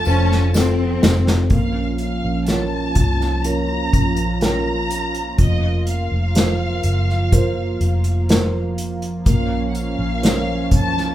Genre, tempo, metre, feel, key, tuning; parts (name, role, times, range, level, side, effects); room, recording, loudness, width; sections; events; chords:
pop ballad; 62 BPM; 4/4; straight; Bb harmonic minor; A4 = 440 Hz
warm studio violin section; melody; 0.0-11.1 s; Eb5 to Bb5; -26 LUFS; left 1 dB
felt-muted upright piano; accompaniment; 0.0-11.1 s; F3 to Db5; -26 LUFS; right 2 dB
lush unison pad; sustained chords; 0.0-11.1 s; F3 to F4; -26 LUFS; right 2 dB; chorus
vintage muted fingered electric bass; bass; 0.0-11.1 s; F1 to C2; -21 LUFS; equal
tambourine; percussion; 0.0-1.3 s; -35 LUFS; left 4 dB
warm studio cello section; second line; 0.1-1.5 s; C4 to Db4; -22 LUFS; left 4 dB
unplugged drum kit; drums; 0.3-11.1 s; hi-hat, kick drum, snare drum; -18 LUFS; equal
moderate large studio reverb, RT60 1.0 s; band playing live in one room; -16 LUFS; side -13 dB against mid
0.0-1.5 A section; 1.5-11.1 B section
drum fill 0.0-1.5
0.0 F; 1.5 Bbm; 5.4 Fsus4; 9.3 Bbmadd9